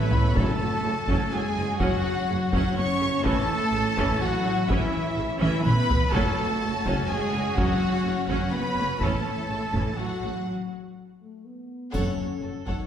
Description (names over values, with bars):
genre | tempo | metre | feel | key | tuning
cinematic, epic orchestral film score | 124 BPM | 3/4 | straight | F# minor | A4 = 440 Hz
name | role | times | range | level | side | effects
warm symphonic violin section | melody | 0.0-12.9 s | A4 to C#6 | -31 LUFS | left 2 dB | none
warm symphonic violin section | second line | 0.0-12.9 s | E4 to C#6 | -36 LUFS | left 2 dB | none
warm symphonic viola section | accompaniment | 0.0-12.9 s | C#3 to A4 | -32 LUFS | right 1 dB | none
dark French horn section | sustained chords | 0.0-12.9 s | A3 to F#4 | -41 LUFS | left 3 dB | none
warm symphonic string section | sustained chords | 0.0-10.5 s | C#4 to C#5 | -37 LUFS | equal | none
clear trumpet | stabs | 0.0-10.5 s | E4 to C#5 | -31 LUFS | equal | none
dark studio cello section | bass | 0.0-12.7 s | F#2 to C#4 | -30 LUFS | right 1 dB | none
mellow tuba | bass | 0.0-10.3 s | F#1 to A1 | -35 LUFS | right 1 dB | none
warm studio double bass section | bass | 0.0-12.8 s | F#1 to F#2 | -33 LUFS | right 2 dB | none
taiko ensemble | drums | 0.1-12.9 s | none | -28 LUFS | equal | none
timpani | percussion | 0.3-1.0, 6.1-6.8 s | F#2 | -34 LUFS | left 1 dB | none
triangle | percussion | 11.9-12.9 s | none | -50 LUFS | right 2 dB | none
room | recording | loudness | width
wet scoring stage reverb, RT60 1.6 s | heard from further back in the room | -22 LUFS | side -9 dB against mid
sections
0.4-11.9 A section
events
drum fill 0.0-0.4, 5.4-6.1, 11.2-11.9; break 10.5-11.9; band accent 11.9-12.4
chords
0.4 F#m; 3.3 A; 6.1 F#m; 9.0 A; 11.9 F#m